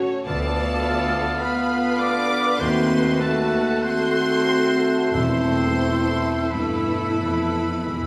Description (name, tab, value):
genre	classical, slow romantic movement for symphony orchestra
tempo	44-53 BPM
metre	4/4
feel	rubato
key	unclear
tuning	A4 = 440 Hz
part	clear studio violin section	second line	0.0-8.1 s	G#3 to A4	-37 LUFS	equal	none
part	rich studio viola section	accompaniment	0.0-8.1 s	E4 to D5	-34 LUFS	equal	none
part	mellow trombone section	sustained chords	0.0-8.1 s	D3 to B3	-32 LUFS	equal	none
part	concert harp	arpeggios	0.0-8.1 s	D3 to C#6	-37 LUFS	equal	none
part	dark trumpet section	stabs	0.0-8.1 s	E4 to F#4	-29 LUFS	equal	none
part	clear studio violin section	melody	0.3-8.1 s	A5 to D6	-32 LUFS	equal	none
part	clear oboe	second line	0.3-8.1 s	A4 to D5	-33 LUFS	equal	none
part	concert flute	second line	0.3-8.1 s	E6 to F#6	-33 LUFS	equal	none
part	mellow bassoon	accompaniment	0.3-8.1 s	G#3 to B3	-33 LUFS	equal	none
part	mellow French horn section	sustained chords	0.3-8.1 s	A3 to D4	-29 LUFS	equal	none
part	rich studio cello section	bass	0.3-8.1 s	D2 to G2	-32 LUFS	equal	none
part	rich studio double bass section	bass	0.3-8.1 s	E1 to D#2	-33 LUFS	equal	none
part	timpani	percussion	5.1-8.1 s	E2	-33 LUFS	equal	none
room	wet recital hall reverb, RT60 1.4 s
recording	small room ambience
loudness	-21 LUFS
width	mono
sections	0.0-8.1 A section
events	timpani fill 7.9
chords	0.3 Bm7b5/D; 2.6 D#dim7; 5.1 Esus4